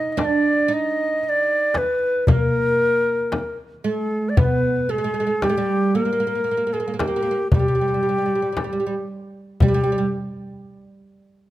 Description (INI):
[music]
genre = Arabic maqam ensemble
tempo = 114 BPM (eighths)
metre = 10/8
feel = straight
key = G maqam saba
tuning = A4 = 441 Hz
[part]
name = breathy ney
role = melody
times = 0.0-10.1 s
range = G4 to Eb5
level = -21 LUFS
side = left 1 dB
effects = none
[part]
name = oud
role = second line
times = 0.0-10.1 s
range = G3 to Eb4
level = -24 LUFS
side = right 4 dB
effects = none
[part]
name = darbuka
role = percussion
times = 0.2-10.1 s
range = none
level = -23 LUFS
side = left 1 dB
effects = none
[part]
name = frame drum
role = percussion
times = 0.2-10.1 s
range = none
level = -22 LUFS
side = left 1 dB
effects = none
[sound]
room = light reverb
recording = close, detailed microphones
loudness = -18 LUFS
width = side -15 dB against mid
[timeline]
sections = 0.0-9.6 A section; 9.6-11.5 B section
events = none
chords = none